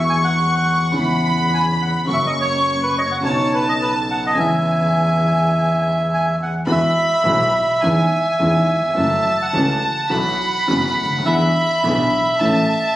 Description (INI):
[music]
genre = tango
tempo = 105 BPM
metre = 4/4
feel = rubato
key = E major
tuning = A4 = 441 Hz
[part]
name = bandoneon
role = melody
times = 0.0-13.0 s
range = B4 to G#5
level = -20 LUFS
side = right 1 dB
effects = plate reverb
[part]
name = rich chamber violin section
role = second line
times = 0.0-13.0 s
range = G#5 to C#6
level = -21 LUFS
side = equal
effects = none
[part]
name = warm concert grand piano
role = accompaniment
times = 0.0-12.6 s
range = F#1 to A4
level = -23 LUFS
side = left 1 dB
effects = none
[part]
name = clear double bass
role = bass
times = 0.0-12.6 s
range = F#1 to E2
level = -22 LUFS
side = equal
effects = none
[sound]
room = moderate large studio reverb, RT60 0.9 s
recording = recorded on a phone in the room, club reverb, vinyl crackle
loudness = -15 LUFS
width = side -14 dB against mid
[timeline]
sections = 0.0-6.7 A section; 6.7-13.0 B section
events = none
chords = 0.0 Eadd9; 0.9 C#m7/E; 2.1 F#; 3.2 Badd9; 4.4 E6; 6.7 Eadd9; 7.8 C#madd9/E; 9.0 F#m7; 10.1 Bsus4; 11.3 E7; 12.4 A